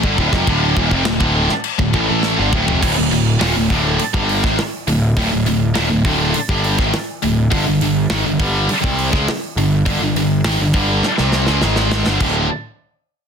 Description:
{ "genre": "heavy metal", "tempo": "102 BPM", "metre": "4/4", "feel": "straight", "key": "unclear", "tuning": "A4 = 445 Hz", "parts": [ { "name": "heavy high-gain guitar", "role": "riff", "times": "0.0-12.5 s", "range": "D2 to C4", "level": "-16 LUFS", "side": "equal", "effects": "distortion" }, { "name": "fuzz picked electric bass", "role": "bass", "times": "0.0-12.5 s", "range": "D1 to C#2", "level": "-20 LUFS", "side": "equal", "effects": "overdrive" }, { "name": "tight metal drum kit", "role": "drums", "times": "0.0-12.3 s", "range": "crash cymbal, hi-hat, kick drum, snare drum, toms", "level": "-21 LUFS", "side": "equal", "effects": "soft clipping on kick, soft clipping on snare" } ], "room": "light reverb", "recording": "dense, heavily limited modern master", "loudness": "-14 LUFS", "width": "side -6 dB against mid", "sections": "0.0-2.8 A section; 2.8-12.2 B section; 12.2-13.3 C section", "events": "drum fill 2.2-2.8, 11.0-12.2", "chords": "0.0 Dm; 2.8 D5; 7.5 G5; 12.2 D5", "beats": "| 0.48 1.06 1.65 2.23 | 2.82 3.41 3.99 4.58 | 5.17 5.75 6.34 6.93 | 7.51 8.10 8.69 9.28 | 9.86 10.45 11.04 11.62 | 12.21" }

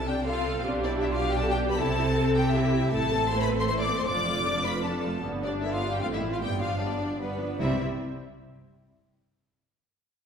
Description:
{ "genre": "quick classical-period movement for string orchestra", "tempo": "156 BPM", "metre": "3/4", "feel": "straight", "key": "C major", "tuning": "A4 = 440 Hz", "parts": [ { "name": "rich chamber violin section", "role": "melody", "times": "0.0-7.8 s", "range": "B4 to D6", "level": "-31 LUFS", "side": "left 4 dB", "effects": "none" }, { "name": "rich chamber violin section", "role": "second line", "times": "0.0-7.8 s", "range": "B3 to D5", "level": "-32 LUFS", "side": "left 2 dB", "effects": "none" }, { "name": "rich chamber double bass section", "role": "bass", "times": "0.0-7.8 s", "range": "F1 to C2", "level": "-34 LUFS", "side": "right 2 dB", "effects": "none" }, { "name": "rich studio cello section", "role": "bass", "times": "0.0-7.8 s", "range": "F2 to C3", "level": "-31 LUFS", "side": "right 1 dB", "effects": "none" }, { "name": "rich chamber viola section", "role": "accompaniment", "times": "0.1-7.8 s", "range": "D3 to A4", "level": "-30 LUFS", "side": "right 2 dB", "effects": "none" } ], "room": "wet scoring stage reverb, RT60 1.6 s", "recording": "heard from further back in the room", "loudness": "-24 LUFS", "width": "side -7 dB against mid", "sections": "0.0-7.6 A section; 7.6-8.8 B section", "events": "none", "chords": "0.0 Dm7/C; 0.6 G/B; 1.8 C; 2.9 Am; 4.1 Dm/F; 5.2 G; 6.0 F/A; 6.4 G7; 7.6 C5", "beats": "0.26 | 0.65 1.03 1.41 | 1.79 2.17 2.55 | 2.93 3.32 3.70 | 4.08 4.47 4.85 | 5.24 5.63 6.02 | 6.41 6.80 7.19 | 7.60" }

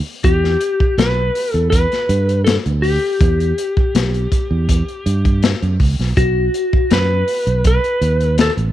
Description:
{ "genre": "straight-eighth soul blues", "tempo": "81 BPM", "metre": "4/4", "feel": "straight", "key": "E minor", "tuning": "A4 = 441 Hz", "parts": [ { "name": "clean lap steel guitar", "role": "melody", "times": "0.2-8.5 s", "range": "F#4 to B4", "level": "-18 LUFS", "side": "left 2 dB", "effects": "none" }, { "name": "fingered electric bass", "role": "bass", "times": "0.2-8.7 s", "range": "A1 to G2", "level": "-17 LUFS", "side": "right 2 dB", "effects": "none" }, { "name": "crunchy breakbeat drum kit", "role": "drums", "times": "0.2-8.7 s", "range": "hi-hat, kick drum, snare drum", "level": "-17 LUFS", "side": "left 1 dB", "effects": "none" } ], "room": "small room ambience", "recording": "1960s-style stereo", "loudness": "-14 LUFS", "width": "side -13 dB against mid", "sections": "0.0-8.7 A section", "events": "none", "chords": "0.0 Em; 6.2 B", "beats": "| 0.24 0.98 1.73 2.47 | 3.21 3.95 4.69 5.43 | 6.17 6.91 7.65 8.39" }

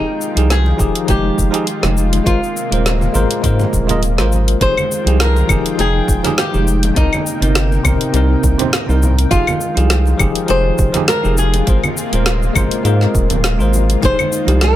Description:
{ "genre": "sunset chillout", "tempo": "102 BPM", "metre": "4/4", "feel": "swing 55% on 16ths", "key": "F minor", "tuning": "A4 = 440 Hz", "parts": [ { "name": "flamenco guitar", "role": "melody", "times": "0.0-14.8 s", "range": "Eb4 to C5", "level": "-20 LUFS", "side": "equal", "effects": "tape echo" }, { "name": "bell-like tine electric piano", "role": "accompaniment", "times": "0.0-14.8 s", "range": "C3 to G5", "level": "-20 LUFS", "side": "moving between left 5 dB and right 4 dB", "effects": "fast stereo tremolo, auto-pan, digital delay" }, { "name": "lush unison pad", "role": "sustained chords", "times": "0.0-14.8 s", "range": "C3 to G5", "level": "-24 LUFS", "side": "equal", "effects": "chorus" }, { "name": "round analog bass", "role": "bass", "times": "0.0-14.8 s", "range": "Eb1 to Ab2", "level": "-15 LUFS", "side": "equal", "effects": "none" }, { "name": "deep house drum kit", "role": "drums", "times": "0.2-14.7 s", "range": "claves, hi-hat, shaker, snare drum", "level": "-20 LUFS", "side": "left 1 dB", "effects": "none" }, { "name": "congas", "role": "percussion", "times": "0.7-14.3 s", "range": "none", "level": "-26 LUFS", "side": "right 2 dB", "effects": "none" }, { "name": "electronic kick drum", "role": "drums", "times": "0.8-14.2 s", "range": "none", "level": "-18 LUFS", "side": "equal", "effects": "none" }, { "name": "kalimba", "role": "arpeggios", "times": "14.0-14.6 s", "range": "Eb4 to G4", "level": "-23 LUFS", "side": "left 6 dB", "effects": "none" } ], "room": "light reverb, digital ambience", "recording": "none", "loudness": "-12 LUFS", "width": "side -13 dB against mid", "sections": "0.0-4.6 A section; 4.6-14.8 B section", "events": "none", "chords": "0.0 Fm9; 2.3 Ab69; 4.6 Fm9; 7.0 Cm7; 9.3 Fm9; 11.7 Ab69; 14.0 Fm9", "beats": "0.50 1.09 1.68 | 2.26 2.85 3.44 4.03 | 4.62 5.21 5.79 6.38 | 6.97 7.56 8.15 8.73 | 9.32 9.91 10.50 11.09 | 11.68 12.26 12.85 13.44 | 14.03 14.62" }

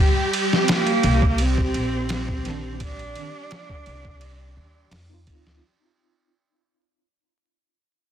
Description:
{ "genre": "trip hop", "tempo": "85 BPM", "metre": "4/4", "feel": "swing 53% on 16ths", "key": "C minor", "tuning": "A4 = 436 Hz", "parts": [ { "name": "string machine, cellos", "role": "sustained chords", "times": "0.0-5.6 s", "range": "G4", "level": "-25 LUFS", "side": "equal", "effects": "phaser, ensemble chorus" }, { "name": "trip hop sampler-style drum kit", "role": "drums", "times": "0.3-5.6 s", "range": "hi-hat, kick drum, ride cymbal, snare drum", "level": "-23 LUFS", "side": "equal", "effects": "none" }, { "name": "rich cello", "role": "melody", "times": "0.6-4.9 s", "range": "Bb3 to D4", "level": "-27 LUFS", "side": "right 2 dB", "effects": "none" }, { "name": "upright bass", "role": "bass", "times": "1.0-5.6 s", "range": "Bb1 to F2", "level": "-25 LUFS", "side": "equal", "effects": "tube saturation" }, { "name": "mellow tine electric piano", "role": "accompaniment", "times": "2.4-5.6 s", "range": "Eb3 to F4", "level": "-40 LUFS", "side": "right 3 dB", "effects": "medium stereo tremolo" } ], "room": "little or no reverb", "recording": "dense, heavily limited modern master, vinyl crackle", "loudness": "-19 LUFS", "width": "side -9 dB against mid", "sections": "0.0-5.6 A section", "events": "fade-out 0.0-5.6", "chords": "0.0 Cmadd9", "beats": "0.69 1.39 2.10 | 2.80 3.51 4.22 4.92" }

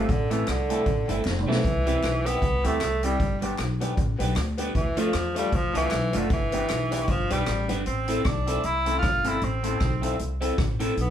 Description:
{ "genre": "ska", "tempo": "154 BPM", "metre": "4/4", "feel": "swing 57% on 8ths", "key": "A minor", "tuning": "A4 = 440 Hz", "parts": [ { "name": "warm tenor saxophone", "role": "melody", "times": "0.0-11.1 s", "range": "C3 to F4", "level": "-27 LUFS", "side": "equal", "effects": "none" }, { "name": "electric guitar through a small old amp", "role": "accompaniment", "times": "0.0-10.9 s", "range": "G3 to C5", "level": "-32 LUFS", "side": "right 2 dB", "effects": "phaser" }, { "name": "clear upright piano", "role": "stabs", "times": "0.0-10.9 s", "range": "A3 to A4", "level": "-33 LUFS", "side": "left 3 dB", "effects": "none" }, { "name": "upright bass", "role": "bass", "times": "0.0-11.1 s", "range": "F1 to E2", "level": "-28 LUFS", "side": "equal", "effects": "none" }, { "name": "street-band drum kit", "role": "drums", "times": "0.1-11.1 s", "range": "hi-hat, kick drum, rim click, snare drum, toms", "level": "-29 LUFS", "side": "equal", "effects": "none" }, { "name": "group handclap", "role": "percussion", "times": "0.5-7.6 s", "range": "none", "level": "-44 LUFS", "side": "left 2 dB", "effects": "none" } ], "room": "wet studio reverb, RT60 0.7 s", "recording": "band playing live in one room", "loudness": "-23 LUFS", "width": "side -10 dB against mid", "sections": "0.0-7.9 A section; 7.9-11.1 B section", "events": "drum fill 1.3-1.6", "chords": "0.1 Am; 1.6 C; 3.2 G; 4.7 Dm; 6.3 G; 7.9 Am", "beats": "| 0.09 0.47 0.86 1.25 | 1.64 2.03 2.42 2.81 | 3.19 3.58 3.97 4.36 | 4.75 5.14 5.53 5.92 | 6.30 6.69 7.08 7.47 | 7.86 8.25 8.64 9.03 | 9.42 9.81 10.20 10.58 | 10.97" }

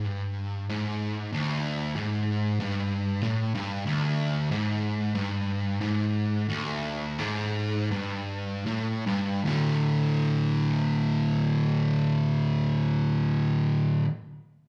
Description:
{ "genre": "metal", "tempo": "73-95 BPM", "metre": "4/4", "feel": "straight", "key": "unclear", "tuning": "A4 = 445 Hz", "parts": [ { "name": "fuzz guitar", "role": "solo", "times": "0.0-14.1 s", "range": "D2 to D3", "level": "-27 LUFS", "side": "equal", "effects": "distortion" } ], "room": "moderate large studio reverb, RT60 1.1 s", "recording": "band playing live in one room", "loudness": "-27 LUFS", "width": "mono", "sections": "0.0-3.9 A section; 3.9-9.5 B section; 9.5-12.7 C section", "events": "slowing down 3.9-9.5", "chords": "0.0 D5", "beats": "0.06 0.70 | 1.33 1.96 2.60 3.23 | 3.86 4.50 5.14 5.80 | 6.48 7.18 7.90 8.66 | 9.46 10.28 11.10 11.93" }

